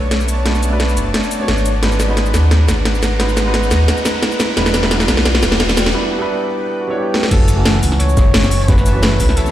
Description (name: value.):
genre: liquid drum and bass.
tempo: 175 BPM.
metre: 4/4.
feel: swing 53% on 16ths.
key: unclear.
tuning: A4 = 440 Hz.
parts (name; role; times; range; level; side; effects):
warm grand piano; accompaniment; 0.0-9.5 s; E3 to C#5; -21 LUFS; right 1 dB; low-pass filter, digital delay.
shimmering ambient pad; sustained chords; 0.0-9.5 s; B4 to A#5; -26 LUFS; left 1 dB; chorus, built-in reverb.
smooth synth bass; bass; 0.0-9.4 s; E1 to D#2; -16 LUFS; equal; none.
riser; sound effects; 0.1-5.9 s; none; -26 LUFS; left 1 dB; none.
drum and bass drum kit; drums; 0.1-9.5 s; crash cymbal, hi-hat, shaker, snare drum; -17 LUFS; equal; none.
warm flugelhorn; melody; 6.8-9.5 s; F#4 to C#5; -22 LUFS; left 1 dB; digital delay.
crunchy breakbeat drum kit; drums; 7.3-9.5 s; hi-hat, snare drum; -25 LUFS; equal; high-pass filter on hats, high-pass filter on snare, high-pass filter on room.
electronic kick drum; drums; 7.3-9.3 s; none; -14 LUFS; equal; none.
room: moderate lush hall reverb, RT60 1.8 s, studio reverb.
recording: played on a big sound system in a bare room, large studio reverb.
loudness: -12 LUFS.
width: side -12 dB against mid.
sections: 0.0-7.3 A section; 7.3-9.5 B section.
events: build-up 0.0-7.3; drum fill 0.0-5.9, 7.1; riser 0.1-5.9; break 5.9-7.3; drop 7.3-9.5.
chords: 0.0 Bm7; 1.7 G#m7; 4.6 Em7; 7.3 F#m7.